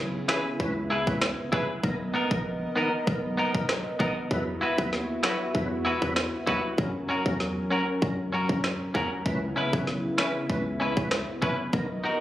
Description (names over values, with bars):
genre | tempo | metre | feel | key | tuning
dancehall | 97 BPM | 4/4 | straight | C# dorian | A4 = 440 Hz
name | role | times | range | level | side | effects
warm analog pad | sustained chords | 0.0-12.2 s | C#3 to D#5 | -32 LUFS | equal | chorus, sidechain pumping
hard-hitting 808-style bass | bass | 0.0-12.0 s | A#1 to F#2 | -32 LUFS | equal | none
tonewheel organ | accompaniment | 0.3-11.9 s | D#3 to B4 | -33 LUFS | equal | overdrive, chorus vibrato, slow rotary speaker
semi-hollow electric guitar | arpeggios | 0.3-12.2 s | B3 to B4 | -30 LUFS | equal | spring reverb
island pop drum kit | drums | 0.3-11.9 s | finger snaps, kick drum, rim click, snare drum | -30 LUFS | equal | none
room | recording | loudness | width
light reverb, digital ambience | recorded on a phone in the room, club reverb | -25 LUFS | side -14 dB against mid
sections
0.0-12.2 A section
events
none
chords
0.0 C#m7; 1.8 Bmaj7; 4.3 Esus2; 6.8 F#; 9.3 C#m7